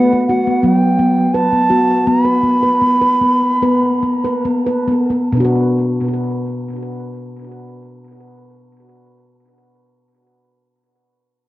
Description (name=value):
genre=world meditative, meditative tuned percussion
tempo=66-87 BPM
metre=4/4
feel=straight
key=B hirajoshi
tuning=A4 = 440 Hz
part: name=bright bansuri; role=melody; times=0.0-4.4 s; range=F#5 to B5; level=-17 LUFS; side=right 1 dB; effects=cassette tape, analog delay
part: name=handpan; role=arpeggios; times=0.0-9.1 s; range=B2 to B4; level=-15 LUFS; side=equal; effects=cassette tape, analog delay
room=moderate studio reverb, RT60 0.6 s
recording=home recording on cassette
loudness=-12 LUFS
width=side -16 dB against mid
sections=0.0-5.3 A section; 5.3-8.9 B section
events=slowing down 0.0-5.3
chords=0.0 F#m; 2.1 N.C.; 5.3 Bm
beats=0.63 1.34 | 2.07 2.82 3.61 4.44 | 5.32 6.23 7.13 8.04